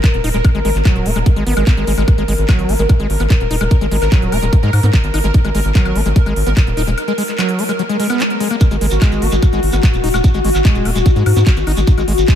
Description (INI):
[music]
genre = psychedelic trance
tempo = 147 BPM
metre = 4/4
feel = straight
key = unclear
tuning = A4 = 439 Hz
[part]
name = pulsing gated texture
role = sustained chords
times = 0.0-12.4 s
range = F#4 to A#4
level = -20 LUFS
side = left 2 dB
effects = chorus, built-in reverb, vintage 12-bit sampler grit, sidechain pumping
[part]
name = overdriven acid bass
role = riff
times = 0.0-12.4 s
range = F#3 to D#4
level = -21 LUFS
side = left 1 dB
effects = distortion, auto-pan, sidechain pumping, ping-pong delay
[part]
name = drum and bass drum kit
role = drums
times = 0.0-12.4 s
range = handclaps, hi-hat, woodblock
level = -24 LUFS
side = left 1 dB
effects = none
[part]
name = electronic kick drum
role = drums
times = 0.0-12.4 s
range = none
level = -11 LUFS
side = equal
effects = none
[part]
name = round analog bass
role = bass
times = 0.1-12.2 s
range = D#1 to G#2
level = -16 LUFS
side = equal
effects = none
[part]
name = swell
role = sound effects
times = 8.0-8.6 s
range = none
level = -25 LUFS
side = right 1 dB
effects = none
[part]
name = shekere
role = percussion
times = 8.6-12.4 s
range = none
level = -30 LUFS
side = right 4 dB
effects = none
[sound]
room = light reverb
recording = none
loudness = -12 LUFS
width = side -10 dB against mid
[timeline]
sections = 0.0-12.4 A section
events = break 7.0-8.6; swell 8.0-8.6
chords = 0.0 G#5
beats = 0.04 | 0.45 0.85 1.26 1.67 | 2.08 2.49 2.89 3.30 | 3.71 4.12 4.53 4.93 | 5.34 5.75 6.16 6.57 | 6.98 7.38 7.79 8.20 | 8.61 9.02 9.43 9.83 | 10.24 10.65 11.06 11.47 | 11.87 12.28